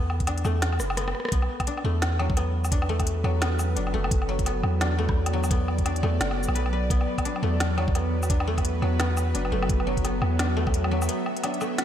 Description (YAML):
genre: half-time drum and bass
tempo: 172 BPM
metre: 4/4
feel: swing 59% on 16ths, half-time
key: B minor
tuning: A4 = 440 Hz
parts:
  - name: koto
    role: arpeggios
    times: 0.0-11.8 s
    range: F#3 to B4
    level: -31 LUFS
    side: left 3 dB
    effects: vintage 12-bit sampler grit, diffuse ambient delay
  - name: long sustained 808-style bass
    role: bass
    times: 0.0-11.1 s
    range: F#1 to E2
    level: -26 LUFS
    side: equal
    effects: none
  - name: organic electronic drum kit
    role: drums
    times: 0.1-11.8 s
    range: hi-hat, rim click, shaker, snare drum, woodblock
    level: -31 LUFS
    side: equal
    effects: none
  - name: electronic kick drum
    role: drums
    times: 0.2-10.7 s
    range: none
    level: -26 LUFS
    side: equal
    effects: none
  - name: bowed-like drone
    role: sustained chords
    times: 2.6-11.8 s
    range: F#3 to E5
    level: -31 LUFS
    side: equal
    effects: built-in reverb, sidechain pumping
room: moderate lush hall reverb, RT60 2.2 s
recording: dreamy mix soaked in reverb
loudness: -23 LUFS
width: side -10 dB against mid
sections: 0.0-11.8 A section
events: drum fill 0.8-1.3; break 11.1-11.8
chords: 0.0 B5